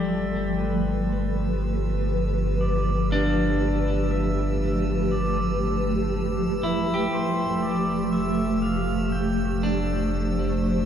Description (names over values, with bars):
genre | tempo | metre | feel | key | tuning
ambient | 60 BPM | 4/4 | straight | G mixolydian | A4 = 441 Hz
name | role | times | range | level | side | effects
pedal steel guitar | melody | 0.0-10.9 s | B4 to G5 | -34 LUFS | right 1 dB | ping-pong delay
granular cloud pad | sustained chords | 0.0-10.9 s | F3 to C5 | -25 LUFS | equal | built-in reverb
clean electric guitar | arpeggios | 0.0-10.9 s | G3 to G4 | -30 LUFS | left 2 dB | spring reverb, ping-pong delay
round analog bass | bass | 0.0-10.9 s | F1 to G1 | -28 LUFS | equal | none
drifting glass-harmonics texture | texture | 0.0-10.9 s | E6 | -41 LUFS | equal | chorus, built-in reverb
room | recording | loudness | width
wet cathedral reverb, RT60 5.3 s | in a vast, echoing space | -22 LUFS | side -9 dB against mid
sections
0.0-10.9 A section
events
fade-in on synth texture 0.0-10.9; fade-in on pedal steel guitar 0.0-10.9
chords
0.0 G13; 7.1 Fmaj9